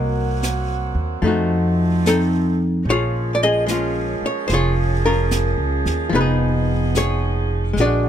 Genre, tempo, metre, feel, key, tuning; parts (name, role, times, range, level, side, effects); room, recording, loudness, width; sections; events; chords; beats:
jazz ballad; 74 BPM; 4/4; swing 66% on 8ths; A4 = 439 Hz
archtop guitar, miked and amplified; accompaniment; 0.0-8.1 s; F3 to Gb5; -21 LUFS; left 3 dB
warm saxophone section; sustained chords; 0.0-8.1 s; D3 to Ab4; -27 LUFS; right 5 dB
upright bass; bass; 0.0-8.1 s; F1 to F2; -20 LUFS; right 1 dB
jazz brush drum kit; drums; 0.4-8.1 s; brushed snare drum, hi-hat, snare drum; -30 LUFS; right 1 dB
little or no reverb; close, detailed microphones; -17 LUFS; side -10 dB against mid
0.0-8.1 A section
0.0 Cm7b5; 1.2 F7b9; 2.9 Bbm7; 6.1 Fm7b5
0.43 1.24 2.05 | 2.87 3.68 4.49 5.30 | 6.12 6.94 7.76